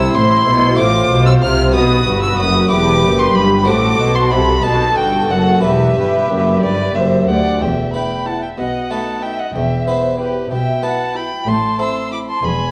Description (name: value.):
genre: classical, baroque-style concerto movement with solo episodes.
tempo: 62 BPM (dotted quarters).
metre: 6/8.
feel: straight.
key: E minor.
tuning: A4 = 441 Hz.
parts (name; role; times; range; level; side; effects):
clear violin; melody; 0.0-12.7 s; B4 to F6; -21 LUFS; equal; none.
rich chamber violin section; melody; 0.0-12.4 s; G4 to F6; -27 LUFS; equal; none.
rich studio violin section; second line; 0.0-12.7 s; G4 to C6; -25 LUFS; equal; none.
harpsichord; accompaniment; 0.0-12.7 s; D2 to C5; -22 LUFS; equal; none.
rich chamber viola section; accompaniment; 0.0-12.3 s; D#4 to G4; -25 LUFS; equal; none.
warm chamber cello section; bass; 0.0-12.7 s; D2 to C3; -22 LUFS; equal; none.
warm chamber double bass section; bass; 0.0-12.7 s; E1 to D2; -22 LUFS; equal; none.
room: wet recital hall reverb, RT60 1.4 s.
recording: worn, warbling old tape, cassette tape, warbly pitch drift.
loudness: -15 LUFS.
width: mono.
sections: 0.0-7.6 A section; 7.6-12.7 B section.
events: none.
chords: 0.0 C; 0.8 F/A; 1.7 B; 2.7 Em; 3.7 F#dim/A; 4.6 B7; 5.6 Em; 7.6 E5; 8.6 B7; 9.6 Em; 11.5 Am.